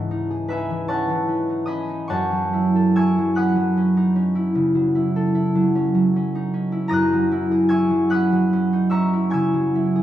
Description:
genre	classical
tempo	45-52 BPM (dotted quarters)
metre	12/8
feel	rubato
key	unclear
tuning	A4 = 440 Hz
part	concert harp	accompaniment	0.0-10.0 s	C#2 to A#6	-18 LUFS	equal	none
room	moderate recital hall reverb, RT60 1.6 s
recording	none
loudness	-18 LUFS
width	side -12 dB against mid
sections	0.0-10.0 A section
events	none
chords	0.0 C#madd9; 2.1 F#m7; 6.9 F#9

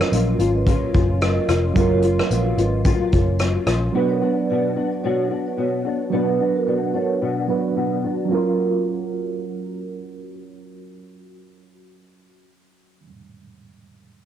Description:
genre	indie pop, bedroom pop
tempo	110 BPM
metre	4/4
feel	swing 55% on 16ths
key	F# major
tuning	A4 = 439 Hz
part	vibraphone with soft mallets	second line	0.0-9.9 s	F#4 to F#5	-27 LUFS	right 6 dB	wide subtle chorus, cassette tape, analog delay
part	nylon-string guitar	accompaniment	0.0-13.1 s	B2 to F#4	-24 LUFS	left 7 dB	ensemble chorus, warbly pitch drift, low-pass filter, cassette tape
part	reed electric piano	accompaniment	0.0-14.2 s	F#3 to B4	-24 LUFS	right 7 dB	fast tremolo, cassette tape, low-pass filter
part	unplugged drum kit	drums	0.0-3.8 s	hi-hat, kick drum, rim click	-22 LUFS	equal	cassette tape
part	vintage muted picked electric bass	bass	0.1-3.9 s	E#1 to A#1	-21 LUFS	equal	none
room	moderate spring reverb, RT60 1.8 s, studio reverb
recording	home recording on cassette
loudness	-18 LUFS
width	side -10 dB against mid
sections	0.0-8.3 A section; 8.3-12.7 B section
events	filter sweep 0.0-8.3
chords	0.0 F#maj7; 3.9 Bm; 8.3 F#maj7

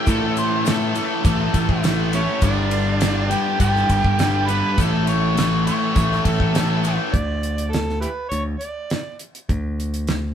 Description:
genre	classic rock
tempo	102 BPM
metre	4/4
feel	straight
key	A mixolydian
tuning	A4 = 442 Hz
part	octave-fuzz lead guitar	second line	0.0-7.0 s	A4 to C#5	-26 LUFS	left 2 dB	distortion
part	bright tonewheel organ	sustained chords	0.0-7.1 s	A3 to D5	-35 LUFS	left 2 dB	none
part	biting overdriven guitar	riff	0.0-7.1 s	G2 to A3	-25 LUFS	left 5 dB	none
part	distorted electric guitar	riff	0.0-7.1 s	G2 to A3	-26 LUFS	right 6 dB	overdrive
part	picked electric bass	bass	0.1-10.3 s	G1 to A2	-22 LUFS	equal	none
part	damped 70s drum kit	drums	0.1-10.2 s	hi-hat, kick drum, ride cymbal, snare drum	-23 LUFS	equal	none
part	tube shaker	percussion	0.1-7.0 s	none	-40 LUFS	left 6 dB	none
part	overdriven harmonica	melody	2.1-9.2 s	E4 to B5	-25 LUFS	right 1 dB	none
part	octave-fuzz lead guitar	second line	2.1-4.8 s	C#4 to B4	-29 LUFS	right 2 dB	distortion
room	moderate studio reverb, RT60 0.7 s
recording	band playing live in one room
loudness	-18 LUFS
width	side -9 dB against mid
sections	0.0-7.1 A section; 7.1-10.3 B section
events	none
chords	0.0 A; 2.4 G; 4.8 A; 7.1 N.C.

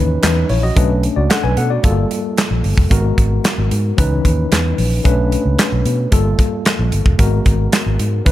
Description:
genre	early-eighties boogie funk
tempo	112 BPM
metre	4/4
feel	straight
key	unclear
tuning	A4 = 439 Hz
part	tine electric piano	accompaniment	0.0-8.3 s	E3 to G#5	-20 LUFS	left 2 dB	medium stereo tremolo
part	vintage muted fingered electric bass	bass	0.0-8.3 s	F1 to B2	-16 LUFS	equal	none
part	modern studio drum kit	drums	0.2-8.3 s	handclaps, hi-hat, kick drum, snare drum	-16 LUFS	equal	none
room	small room ambience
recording	none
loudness	-13 LUFS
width	side -14 dB against mid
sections	0.0-8.3 A section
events	none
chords	0.0 C#m9; 0.8 Bm9; 1.8 Gm9; 2.9 G#m9; 4.0 C#m9; 5.0 Bm9; 6.1 Gm9; 7.2 G#m9

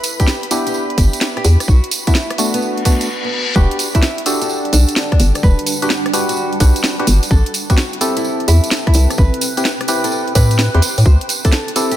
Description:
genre	UK garage, two-step garage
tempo	128 BPM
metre	4/4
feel	swing 67% on 16ths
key	E minor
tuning	A4 = 440 Hz
part	nylon-string guitar	melody	0.0-12.0 s	B3 to C5	-25 LUFS	equal	diffuse ambient delay
part	soft string machine	sustained chords	0.0-3.1 s	B4 to B5	-31 LUFS	right 2 dB	phaser, ensemble chorus, sidechain pumping
part	garage drum kit	drums	0.0-12.0 s	hi-hat, rim click, snare drum	-21 LUFS	equal	none
part	tambourine	percussion	0.0-12.0 s	none	-24 LUFS	right 4 dB	none
part	percussive organ stab	stabs	0.2-12.0 s	A3 to B4	-21 LUFS	equal	chorus, diffuse ambient delay
part	electronic kick drum	drums	0.2-11.5 s	none	-12 LUFS	equal	none
part	hollow knocking FM bass	bass	1.0-11.2 s	E1 to A2	-12 LUFS	equal	none
part	reverse cymbal	sound effects	2.8-3.6 s	none	-24 LUFS	left 4 dB	none
part	granular cloud pad	texture	4.7-12.0 s	G3 to G5	-26 LUFS	right 1 dB	built-in reverb, ensemble chorus, sidechain pumping
room	light reverb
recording	none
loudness	-12 LUFS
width	side -12 dB against mid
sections	0.0-3.6 A section; 3.6-12.0 B section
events	reverse cymbal 2.8-3.6; break 3.1-3.6; drop 3.6-12.0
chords	0.0 Cmaj7 (rootless); 1.7 Bm7; 3.6 Em9 (rootless); 7.3 Am9; 11.1 D7sus4

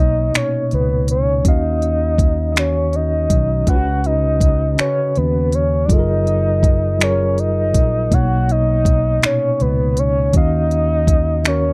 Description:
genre	slow six-eight R&B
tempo	54 BPM (dotted quarters)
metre	6/8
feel	straight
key	F# major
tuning	A4 = 444 Hz
part	soft octave-layered synth lead	melody	0.0-11.7 s	B4 to F#5	-22 LUFS	equal	chorus, tremolo
part	mellow tine electric piano	accompaniment	0.0-11.7 s	A#2 to E#5	-25 LUFS	equal	none
part	fingered electric bass	bass	0.0-11.7 s	F#1 to D#2	-21 LUFS	equal	none
part	smooth R&B drum kit	drums	0.3-11.6 s	finger snaps, hi-hat, kick drum	-18 LUFS	equal	none
room	little or no reverb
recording	dry, close 1970s-style studio recording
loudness	-17 LUFS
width	mono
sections	0.0-11.7 A section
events	none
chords	0.0 Bmaj9; 1.4 D#m9; 3.7 C#7sus4; 5.9 F#maj9; 8.1 Bmaj9; 10.3 D#m9

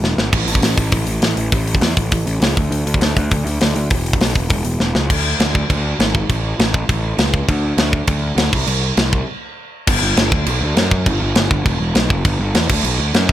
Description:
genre	punk rock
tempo	201 BPM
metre	4/4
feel	straight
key	unclear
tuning	A4 = 440 Hz
part	fuzz picked electric bass	bass	0.0-13.3 s	E1 to F#2	-18 LUFS	equal	overdrive
part	tight metal drum kit	drums	0.0-13.3 s	crash cymbal, hi-hat, kick drum, snare drum	-16 LUFS	equal	none
room	little or no reverb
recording	none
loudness	-14 LUFS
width	side -12 dB against mid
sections	0.0-5.1 A section; 5.1-9.9 B section; 9.9-13.3 C section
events	drum fill 0.0, 4.8; break 9.3-9.9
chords	none

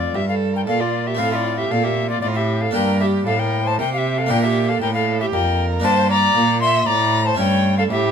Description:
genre	classical, baroque-style sonata movement with continuo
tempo	116 BPM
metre	3/4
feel	straight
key	unclear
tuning	A4 = 440 Hz
part	bright alto recorder	melody	0.0-8.1 s	D5 to C6	-21 LUFS	left 5 dB	none
part	harpsichord	accompaniment	0.0-8.1 s	F2 to G4	-24 LUFS	equal	none
part	rich cello	bass	0.0-8.1 s	F2 to C3	-22 LUFS	right 1 dB	none
part	rich violin	second line	0.1-8.1 s	F4 to E5	-23 LUFS	right 4 dB	none
room	light reverb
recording	minimal, uncompressed stereo recording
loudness	-16 LUFS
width	side -7 dB against mid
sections	0.0-8.1 A section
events	none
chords	0.0 F; 1.2 F/A; 2.7 Gm; 7.4 A7/G

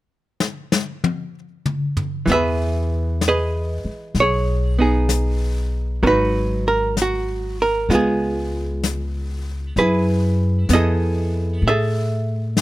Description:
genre	jazz ballad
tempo	64 BPM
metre	4/4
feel	swing 67% on 8ths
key	E major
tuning	A4 = 440 Hz
part	jazz brush drum kit	drums	0.4-12.6 s	brushed snare drum, hi-hat, snare drum, toms	-24 LUFS	left 4 dB	none
part	archtop guitar, miked and amplified	accompaniment	2.3-12.6 s	E3 to E5	-20 LUFS	right 2 dB	none
part	upright bass	bass	2.3-12.6 s	G#1 to A2	-21 LUFS	left 1 dB	none
room	little or no reverb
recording	close, detailed microphones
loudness	-18 LUFS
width	side -16 dB against mid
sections	0.0-2.3 A section; 2.3-12.6 B section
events	drum fill 0.4-2.3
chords	0.0 N.C.; 2.3 Emaj7; 6.0 G#m7; 7.9 C#7; 9.8 F#m11

